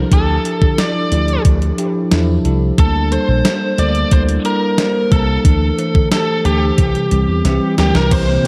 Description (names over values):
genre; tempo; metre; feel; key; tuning
1980s-style pop; 90 BPM; 4/4; straight; unclear; A4 = 444 Hz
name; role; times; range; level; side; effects
bell-like tine electric piano; accompaniment; 0.0-8.5 s; E3 to C5; -21 LUFS; equal; analog chorus
slap bass with an envelope filter; bass; 0.0-8.4 s; Bb1 to D3; -19 LUFS; equal; none
biting lead guitar; melody; 0.1-8.4 s; G4 to D5; -22 LUFS; equal; overdrive, analog delay
clean 12-bit digital drum machine; drums; 0.1-8.5 s; crash cymbal, hi-hat, kick drum, snare drum; -18 LUFS; equal; none
string machine, cellos; sustained chords; 8.1-8.5 s; C3 to E4; -23 LUFS; equal; ensemble chorus
room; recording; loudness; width
moderate plate reverb, RT60 2.7 s; dreamy mix soaked in reverb; -15 LUFS; mono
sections
0.0-8.1 A section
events
drum fill 7.4-8.1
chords
0.0 Dmadd9; 2.8 Gmadd9; 5.4 Asus4/D; 6.8 C